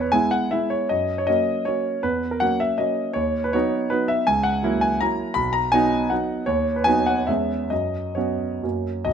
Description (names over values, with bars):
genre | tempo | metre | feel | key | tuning
classical, romantic triple-time dance for piano with dotted rhythms | 123-173 BPM | 3/4 | rubato | unclear | A4 = 441 Hz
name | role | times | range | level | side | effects
warm grand piano | solo | 0.0-9.1 s | B1 to B5 | -20 LUFS | equal | none
room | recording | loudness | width
light reverb | close, detailed microphones | -20 LUFS | side -8 dB against mid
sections
0.0-9.1 A section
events
none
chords
0.0 E; 0.9 F#; 2.0 F#7/E; 3.2 B/D#; 4.3 F#7/C#; 5.4 B; 6.5 B/D#; 7.3 C#m7/E; 7.7 F#sus4; 8.6 F#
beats
0.12 0.52 | 0.89 1.27 1.66 | 2.04 2.42 2.79 | 3.16 3.54 3.92 | 4.27 4.63 5.01 | 5.36 5.73 6.12 | 6.48 6.87 7.29 | 7.71 8.17 8.64 | 9.06